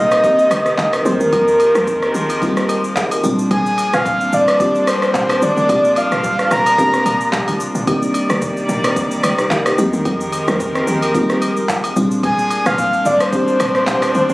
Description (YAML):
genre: amapiano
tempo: 110 BPM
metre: 4/4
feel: swing 55% on 16ths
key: F dorian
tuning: A4 = 439 Hz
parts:
  - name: breathy flute-like synth lead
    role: melody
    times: 0.0-7.3, 12.2-14.3 s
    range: Bb4 to Bb5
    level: -15 LUFS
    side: equal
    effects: chorus, digital delay
  - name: crystalline FM electric piano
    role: accompaniment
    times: 0.0-14.3 s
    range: G3 to Eb5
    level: -21 LUFS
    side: equal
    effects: chorus
  - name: warm studio string section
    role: sustained chords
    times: 0.0-14.3 s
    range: C3 to D5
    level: -22 LUFS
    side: equal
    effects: sidechain pumping
  - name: woody log drum bass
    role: bass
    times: 0.0-14.3 s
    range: Ab1 to Bb2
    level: -24 LUFS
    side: equal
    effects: none
  - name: deep house drum kit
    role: drums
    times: 0.1-14.3 s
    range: handclaps, kick drum, rim click, shaker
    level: -22 LUFS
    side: equal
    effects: none
  - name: agogo bells and woodblock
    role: percussion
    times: 0.1-14.1 s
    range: none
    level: -25 LUFS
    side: equal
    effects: none
room: light reverb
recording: recorded on a phone in the room, studio reverb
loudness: -13 LUFS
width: side -20 dB against mid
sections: 0.0-14.3 A section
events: none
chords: 0.0 Cm9; 1.1 Fm11; 3.2 Bb13; 7.9 Cm9; 9.8 Fm11; 12.0 Bb13